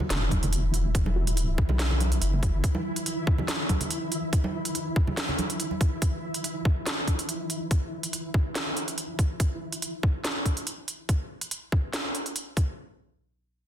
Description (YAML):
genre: deep dubstep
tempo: 142 BPM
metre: 4/4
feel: swing 54% on 16ths, half-time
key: unclear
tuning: A4 = 440 Hz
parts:
  - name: congas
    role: percussion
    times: 0.0-5.8 s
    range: none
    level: -34 LUFS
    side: right 2 dB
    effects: dub echo
  - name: flickering grainy texture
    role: texture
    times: 0.0-9.4 s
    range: E3 to E4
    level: -34 LUFS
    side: equal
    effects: built-in reverb
  - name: deep soft wobble bass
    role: bass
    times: 0.1-2.6 s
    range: E1 to B1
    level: -25 LUFS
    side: equal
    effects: chorus
  - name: garage drum kit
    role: drums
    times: 0.1-12.7 s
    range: hi-hat, snare drum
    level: -30 LUFS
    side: right 1 dB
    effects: none
  - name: electronic kick drum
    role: drums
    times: 0.3-12.7 s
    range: none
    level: -25 LUFS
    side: equal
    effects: none
  - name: filtered dub chord stab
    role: stabs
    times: 1.2-1.3 s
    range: G3 to F#4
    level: -42 LUFS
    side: equal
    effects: none
room: light reverb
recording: dense, heavily limited modern master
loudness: -25 LUFS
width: side -10 dB against mid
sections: 0.0-12.8 A section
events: filter sweep on wobble bass 0.0-2.6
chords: none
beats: 0.10 0.53 | 0.95 1.37 1.79 2.22 | 2.64 3.06 3.48 3.91 | 4.33 4.75 5.17 5.60 | 6.02 6.44 6.86 7.29 | 7.71 8.13 8.55 8.98 | 9.40 9.82 10.24 10.67 | 11.09 11.51 11.93 12.36